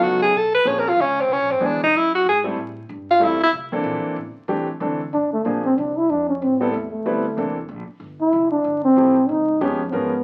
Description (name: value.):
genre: jazz.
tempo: 187 BPM.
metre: 3/4.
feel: swing 62% on 8ths.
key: C major from 4.5 s.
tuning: A4 = 440 Hz.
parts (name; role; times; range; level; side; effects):
breathy tenor saxophone; melody; 0.0-3.5 s; C4 to Db5; -19 LUFS; equal; none.
clear grand piano; accompaniment; 0.0-10.1 s; E3 to B4; -26 LUFS; equal; none.
upright bass; bass; 0.0-10.2 s; F1 to A2; -40 LUFS; equal; none.
breathy trombone; second line; 5.1-10.2 s; A3 to E4; -21 LUFS; equal; none.
room: moderate large studio reverb, RT60 0.9 s.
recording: very old 78 rpm record, vinyl crackle.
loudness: -20 LUFS.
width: mono.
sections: 0.0-4.5 A section; 4.5-10.2 A section.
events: tenor saxophone solo 0.0-4.5; trombone solo 4.5-10.2.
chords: 0.0 B9; 0.6 Bbm9; 1.6 E7; 2.6 Am7; 3.5 C13; 4.5 C69; 5.4 Bb9; 6.4 Am9; 7.4 C13; 8.3 Fmaj9; 9.3 Db7#11.